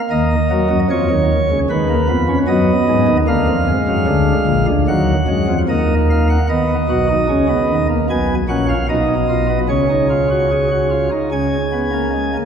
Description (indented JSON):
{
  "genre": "classical, baroque-style 3-part fugue for pipe organ",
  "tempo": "75 BPM",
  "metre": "4/4",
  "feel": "straight",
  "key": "Eb minor",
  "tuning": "A4 = 440 Hz",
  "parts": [
    { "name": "pipe organ, sparkling flutes", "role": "solo", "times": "0.1-12.5 s", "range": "Bb1 to G#5", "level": "-14 LUFS", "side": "equal", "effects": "none" }
  ],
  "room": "wet church reverb, RT60 2.8 s",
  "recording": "recorded in a church or concert hall",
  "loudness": "-14 LUFS",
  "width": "side -7 dB against mid",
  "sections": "0.0-6.5 A section; 6.5-12.5 B section",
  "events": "none",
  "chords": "0.1 Ebm; 1.7 Abm/Eb; 3.3 Bb7/D; 4.9 Ebm; 6.5 B; 9.7 C#sus4; 11.3 C#5"
}